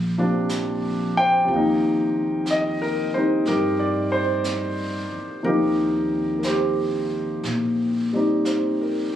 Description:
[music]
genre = jazz ballad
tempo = 61 BPM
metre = 4/4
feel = swing 68% on 8ths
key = Eb major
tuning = A4 = 442 Hz
[part]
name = upright bass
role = bass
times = 0.0-9.1 s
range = Bb1 to Bb2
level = -27 LUFS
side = left 1 dB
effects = none
[part]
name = warm grand piano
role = accompaniment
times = 0.2-9.2 s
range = C3 to G5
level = -21 LUFS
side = equal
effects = none
[part]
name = jazz brush drum kit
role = drums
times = 0.5-9.2 s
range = brushed snare drum, hi-hat, snare drum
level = -36 LUFS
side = right 2 dB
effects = none
[sound]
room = moderate club reverb, RT60 0.6 s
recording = recorded on a phone in the room, club reverb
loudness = -20 LUFS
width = side -10 dB against mid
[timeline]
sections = 0.0-9.2 A section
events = none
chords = 0.0 Bbadd9; 1.5 Eb6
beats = 0.50 | 1.49 2.48 3.46 4.46 | 5.45 6.44 7.45 8.46

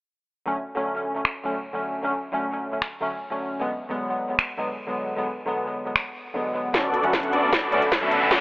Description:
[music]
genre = future bass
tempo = 153 BPM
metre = 4/4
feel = half-time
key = B minor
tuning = A4 = 440 Hz
[part]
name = glassy digital keys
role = accompaniment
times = 0.5-8.4 s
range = D3 to C#4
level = -26 LUFS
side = equal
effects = chorus, sidechain pumping, dub echo
[part]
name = trap drum kit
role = drums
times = 1.2-8.4 s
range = finger snaps, hi-hat, snare drum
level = -23 LUFS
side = equal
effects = high-pass filter on snare, low-pass filter on snare, high-pass filter on hats, low-pass filter on hats
[part]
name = shimmering ambient pad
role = sustained chords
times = 7.9-8.4 s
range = A4 to B5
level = -29 LUFS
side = equal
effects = none
[part]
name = supersaw chords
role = riff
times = 6.7-8.4 s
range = B3 to F#5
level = -22 LUFS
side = equal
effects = phaser, sidechain pumping, low-pass filter, dub echo
[part]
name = saturated sub bass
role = bass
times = 6.7-8.4 s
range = B1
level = -50 LUFS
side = equal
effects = sidechain pumping
[part]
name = electronic kick drum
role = drums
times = 6.7-8.4 s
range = none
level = -34 LUFS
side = equal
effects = none
[part]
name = riser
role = sound effects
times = 7.5-8.4 s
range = none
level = -28 LUFS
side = left 2 dB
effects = none
[sound]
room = light reverb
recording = telephone sound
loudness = -23 LUFS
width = side -22 dB against mid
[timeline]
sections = 0.5-6.7 A section; 6.7-8.4 B section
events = build-up 6.7-8.4; drum fill 6.7-8.4; filter sweep on supersaw synth 6.7-8.4; filter sweep 6.7-8.4; riser 7.5-8.4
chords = 0.5 Dmaj7; 3.6 Bm6/D; 6.7 Bm7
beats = | 0.47 0.86 1.25 1.64 | 2.04 2.43 2.82 3.21 | 3.60 4.00 4.39 4.78 | 5.17 5.56 5.96 6.35 | 6.74 7.13 7.53 7.92 | 8.31

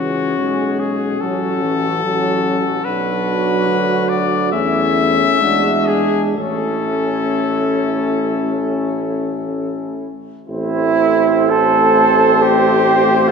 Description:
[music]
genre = classical, hymn-like piece for brass band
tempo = 56-74 BPM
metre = 4/4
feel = rubato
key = A major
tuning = A4 = 439 Hz
[part]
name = clear cornet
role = melody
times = 0.0-13.3 s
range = F#4 to E5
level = -20 LUFS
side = left 5 dB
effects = none
[part]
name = mellow flugelhorn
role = second line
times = 0.0-13.3 s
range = E4 to A4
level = -19 LUFS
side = right 5 dB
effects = none
[part]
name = bright trombone section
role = accompaniment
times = 0.0-13.3 s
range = C4 to D4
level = -21 LUFS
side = left 3 dB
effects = none
[part]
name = mellow euphonium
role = accompaniment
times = 0.0-13.3 s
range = E3 to A3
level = -22 LUFS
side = right 1 dB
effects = none
[part]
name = clear tuba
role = bass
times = 0.0-13.3 s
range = A1 to E2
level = -23 LUFS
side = equal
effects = none
[sound]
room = wet church reverb, RT60 2.5 s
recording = minimal, uncompressed stereo recording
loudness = -14 LUFS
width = side -5 dB against mid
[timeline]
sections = 0.0-10.5 A section; 10.5-13.3 B section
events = none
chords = 0.0 C#m; 1.2 F#m/A; 2.8 Bm; 4.5 A/E; 5.4 E9; 6.4 A; 10.5 Am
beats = 0.38 1.21 2.04 | 2.85 3.67 4.53 5.41 | 6.37 7.41 8.46 9.48 | 10.49 11.50 12.42 13.28

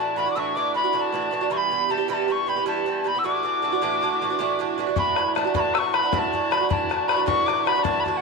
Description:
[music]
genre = celtic folk, Celtic slip jig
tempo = 104 BPM (dotted quarters)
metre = 9/8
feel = straight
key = D major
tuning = A4 = 440 Hz
[part]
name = mellow tin whistle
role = melody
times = 0.0-8.2 s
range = F#5 to E6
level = -23 LUFS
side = left 4 dB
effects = none
[part]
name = Irish bouzouki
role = accompaniment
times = 0.0-8.2 s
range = G2 to G4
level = -25 LUFS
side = right 8 dB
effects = none
[part]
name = bodhran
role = percussion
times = 5.0-8.1 s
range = none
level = -26 LUFS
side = left 11 dB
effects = none
[sound]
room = moderate plate reverb, RT60 3.5 s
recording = 1960s-style stereo with parts hard left and right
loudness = -20 LUFS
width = side -3 dB against mid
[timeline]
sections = 0.0-5.0 A section; 5.0-8.2 A section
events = none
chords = 0.0 Dadd9; 1.5 Em; 3.2 Dadd9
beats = 0.36 0.94 | 1.51 2.09 2.67 | 3.24 3.82 4.39 | 4.97 5.55 6.12 | 6.70 7.28 7.85

